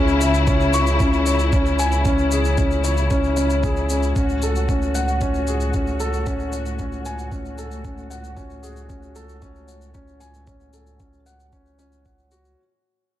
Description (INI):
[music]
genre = piano and strings electronica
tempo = 114 BPM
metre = 4/4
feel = straight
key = unclear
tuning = A4 = 442 Hz
[part]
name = clear studio string section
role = sustained chords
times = 0.0-12.5 s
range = A2 to F#4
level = -25 LUFS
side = left 3 dB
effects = sidechain pumping, low-pass filter
[part]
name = felt-muted upright piano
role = riff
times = 0.0-12.6 s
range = C#4 to C#6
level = -23 LUFS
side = equal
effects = tape echo
[part]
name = warm sub bass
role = bass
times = 0.0-12.6 s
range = C#2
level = -24 LUFS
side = equal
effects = sidechain pumping
[part]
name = shaker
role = drums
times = 0.1-12.6 s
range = none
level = -34 LUFS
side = left 3 dB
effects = overdrive
[part]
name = electronic kick drum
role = drums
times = 0.5-12.2 s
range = none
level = -23 LUFS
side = equal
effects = none
[sound]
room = light reverb, small room reverb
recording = dark, warm production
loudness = -18 LUFS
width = side -12 dB against mid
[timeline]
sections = 0.0-12.6 A section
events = fade-out 0.0-12.6; filter sweep on string section 0.0-12.6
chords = 0.0 C#m; 4.2 F#madd9/C#